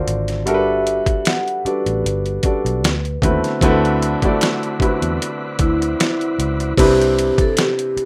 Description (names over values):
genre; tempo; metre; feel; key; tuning
R&B, neo-soul; 76 BPM; 4/4; swing 54% on 16ths; unclear; A4 = 439 Hz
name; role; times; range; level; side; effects
vibraphone with soft mallets; melody; 0.0-8.1 s; E4 to F#5; -23 LUFS; equal; none
warm baby grand piano; accompaniment; 0.0-8.1 s; C3 to D5; -22 LUFS; equal; none
vintage muted fingered electric bass; bass; 0.1-8.0 s; G1 to E2; -25 LUFS; equal; none
boom bap sampler-style drum kit; drums; 0.1-8.1 s; crash cymbal, finger snaps, hi-hat, kick drum, snare drum; -22 LUFS; equal; none
tonewheel organ; sustained chords; 3.6-6.7 s; C4 to B4; -30 LUFS; equal; fast rotary speaker
room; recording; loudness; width
moderate small room reverb, RT60 0.6 s; rough home demo mix; -18 LUFS; mono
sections
0.0-3.6 A section; 3.6-6.8 B section; 6.8-8.1 C section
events
none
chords
0.5 Gmaj9; 2.8 D13; 6.8 Cmaj7